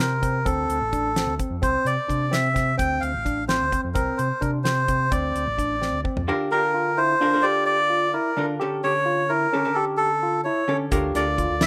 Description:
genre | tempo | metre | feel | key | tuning
progressive instrumental, band music in an uneven meter | 258 BPM (eighths) | 5/8 | straight | D minor | A4 = 440 Hz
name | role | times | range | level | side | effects
melodica | melody | 0.0-11.7 s | A4 to G5 | -25 LUFS | equal | tape echo
barky tine electric piano | arpeggios | 0.0-11.7 s | C4 to G4 | -30 LUFS | equal | none
overdriven fingered electric bass | bass | 0.0-6.3, 10.9-11.7 s | A1 to C3 | -30 LUFS | equal | none
damped 70s drum kit | drums | 0.2-6.3, 10.9-11.7 s | hi-hat, kick drum, snare drum, toms | -29 LUFS | equal | none
vintage hollow-body jazz guitar | accompaniment | 6.3-11.7 s | D3 to Bb4 | -31 LUFS | equal | none
room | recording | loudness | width
moderate small room reverb, RT60 0.5 s | rough home demo mix | -23 LUFS | mono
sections
0.0-6.3 A section; 6.3-11.7 B section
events
drum fill 5.8-6.3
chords
0.5 D7(no3); 1.6 C; 2.8 Dm7; 4.0 Bbadd9/C; 5.1 D7(no3); 6.3 Gm9/D; 8.6 A7/D; 10.9 Gm9/D

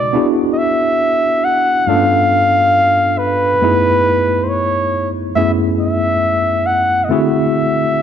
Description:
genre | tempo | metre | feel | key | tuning
R&B | 69 BPM | 4/4 | swing 55% on 16ths | unclear | A4 = 440 Hz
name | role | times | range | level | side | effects
warm flugelhorn | melody | 0.0-8.0 s | B4 to F#5 | -14 LUFS | equal | slapback echo
tine electric piano | accompaniment | 0.0-8.0 s | F#2 to B4 | -16 LUFS | equal | overdrive, fast stereo tremolo
room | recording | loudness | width
moderate plate reverb, RT60 3.0 s | none | -12 LUFS | side -8 dB against mid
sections
0.0-8.0 A section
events
none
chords
0.1 G#m7b5; 1.9 G9; 3.6 F#m11; 7.1 D9

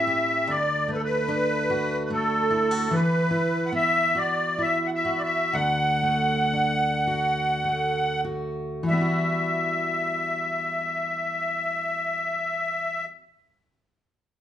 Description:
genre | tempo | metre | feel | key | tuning
celtic folk, Celtic slow air | 46-75 BPM | 3/4 | rubato | E minor | A4 = 444 Hz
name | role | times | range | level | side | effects
musette accordion | melody | 0.0-13.1 s | A4 to F#5 | -24 LUFS | equal | none
picked steel-string acoustic guitar | accompaniment | 0.0-13.2 s | D2 to G4 | -28 LUFS | equal | none
room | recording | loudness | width
moderate large studio reverb, RT60 0.9 s | band playing live in one room, nothing above 10.7 kHz | -22 LUFS | side -10 dB against mid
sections
0.0-8.9 A section; 8.9-12.7 B section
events
slowing down 2.9-8.9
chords
0.5 D; 2.9 Esus2; 5.5 D; 8.9 Emadd9

